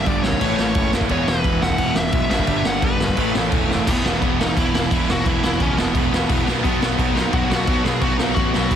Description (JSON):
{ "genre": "punk rock", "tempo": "174 BPM", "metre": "4/4", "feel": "straight", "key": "unclear", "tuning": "A4 = 442 Hz", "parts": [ { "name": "bluesy overdriven lead guitar", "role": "melody", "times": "0.0-8.8 s", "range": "B3 to F#5", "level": "-24 LUFS", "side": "left 1 dB", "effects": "distortion" }, { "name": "crunchy overdriven guitar", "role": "riff", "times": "0.0-8.8 s", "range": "E2 to B3", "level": "-24 LUFS", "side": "right 15 dB", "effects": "none" }, { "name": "fuzz guitar", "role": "riff", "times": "0.0-3.9, 6.6-8.8 s", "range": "G2 to E4", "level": "-28 LUFS", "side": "left 2 dB", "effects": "distortion" }, { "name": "sludgy distorted guitar", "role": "riff", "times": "0.0-8.8 s", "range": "E2 to B3", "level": "-25 LUFS", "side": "left 13 dB", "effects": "overdrive" }, { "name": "fuzz picked electric bass", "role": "bass", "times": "0.0-8.8 s", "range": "E1 to C#2", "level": "-26 LUFS", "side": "equal", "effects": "overdrive" }, { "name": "raw garage drum kit", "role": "drums", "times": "0.1-8.8 s", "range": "crash cymbal, kick drum, snare drum", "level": "-21 LUFS", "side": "equal", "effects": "none" } ], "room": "little or no reverb", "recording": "dense, heavily limited modern master", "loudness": "-17 LUFS", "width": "side -9 dB against mid", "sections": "0.0-3.9 A section; 3.9-8.8 B section", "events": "drum fill 3.7", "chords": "0.4 A; 1.1 E; 2.3 G; 3.2 A; 3.9 E5; 6.5 B" }